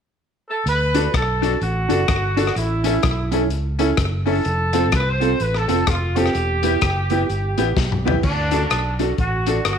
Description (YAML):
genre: ska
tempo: 127 BPM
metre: 4/4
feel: swing 60% on 8ths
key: D major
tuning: A4 = 441 Hz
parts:
  - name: warm horn section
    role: melody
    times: 0.5-9.8 s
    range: D4 to C5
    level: -23 LUFS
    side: right 1 dB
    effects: none
  - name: fingered electric bass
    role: bass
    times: 0.7-9.8 s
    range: E1 to D2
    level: -22 LUFS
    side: right 1 dB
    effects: none
  - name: crunchy breakbeat drum kit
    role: drums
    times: 0.7-9.8 s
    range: crash cymbal, hi-hat, kick drum, rim click, snare drum, toms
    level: -24 LUFS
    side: left 3 dB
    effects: slapback echo
  - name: mellow electric guitar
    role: accompaniment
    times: 0.9-9.6 s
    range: B3 to D5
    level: -25 LUFS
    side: right 12 dB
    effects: lush chorus
  - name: bright upright piano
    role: stabs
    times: 0.9-9.6 s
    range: B3 to A4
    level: -25 LUFS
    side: left 9 dB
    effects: none
room: moderate echo chamber reverb, RT60 1.2 s, small room ambience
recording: 1960s-style stereo with parts hard left and right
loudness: -17 LUFS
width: side -7 dB against mid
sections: 0.7-8.2 A section; 8.2-9.8 B section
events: drum fill 7.8-8.2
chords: 0.0 N.C.; 0.7 D; 2.6 A; 4.5 F; 6.3 Em; 8.2 D